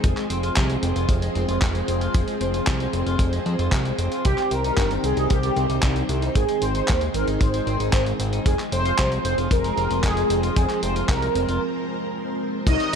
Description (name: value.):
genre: italo disco.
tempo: 114 BPM.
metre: 4/4.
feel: straight.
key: F minor.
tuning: A4 = 441 Hz.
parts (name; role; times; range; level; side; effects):
string machine, full ensemble; sustained chords; 0.0-13.0 s; Eb3 to C5; -27 LUFS; equal; ensemble chorus, shimmer reverb.
clean electric guitar; arpeggios; 0.0-13.0 s; Eb3 to F4; -33 LUFS; left 3 dB; ping-pong delay, shimmer reverb.
fat analog bass; bass; 0.0-13.0 s; F1 to F2; -25 LUFS; equal; none.
dusty soul sampler-style drum kit; drums; 0.0-13.0 s; cabasa, crash cymbal, handclaps, hi-hat; -30 LUFS; equal; none.
kick drum; drums; 0.0-12.8 s; none; -21 LUFS; equal; none.
mellow synth brass; melody; 4.2-13.0 s; Eb4 to Eb5; -25 LUFS; right 1 dB; chorus, phaser, ping-pong delay, shimmer reverb.
room: moderate plate reverb, RT60 2.4 s.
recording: dark, warm production.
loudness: -20 LUFS.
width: side -7 dB against mid.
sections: 0.0-12.7 A section.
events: break 11.6-12.7.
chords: 0.0 Fm; 4.2 Cm; 6.4 Ab; 8.5 Fm.